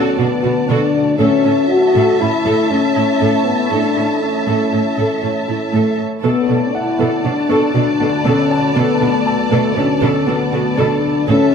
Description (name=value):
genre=cinematic, hybrid orchestral and electronic film score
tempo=119 BPM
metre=5/4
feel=straight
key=B minor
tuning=A4 = 439 Hz
part: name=warm symphonic violin section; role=second line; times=0.0-11.5 s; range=D5 to A5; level=-22 LUFS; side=equal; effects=none
part: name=warm symphonic viola section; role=accompaniment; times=0.0-11.5 s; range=C#4 to A4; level=-21 LUFS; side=right 2 dB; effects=none
part: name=deep dark ambient pad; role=sustained chords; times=0.0-11.5 s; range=D3 to C#5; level=-23 LUFS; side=right 2 dB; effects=chorus, built-in reverb
part: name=mellow French horn section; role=sustained chords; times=0.0-11.5 s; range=A3 to F#4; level=-16 LUFS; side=left 4 dB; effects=none
part: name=thumb-piano-like synth pluck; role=arpeggios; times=0.0-11.4 s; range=A3 to A4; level=-26 LUFS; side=right 4 dB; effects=none
part: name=clear concert grand piano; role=texture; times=0.0-11.3 s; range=A4 to C#6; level=-28 LUFS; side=left 1 dB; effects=digital delay
part: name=rich symphonic cello section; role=bass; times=0.2-11.4 s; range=A2 to B2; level=-21 LUFS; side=right 4 dB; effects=none
part: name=riser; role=sound effects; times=11.3-11.5 s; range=none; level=barely audible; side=none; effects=none
room=moderate scoring stage reverb, RT60 1.6 s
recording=lossy compression artefacts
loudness=-13 LUFS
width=side -6 dB against mid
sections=0.0-11.5 A section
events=none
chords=0.0 Bm7; 1.2 A; 6.2 Bm7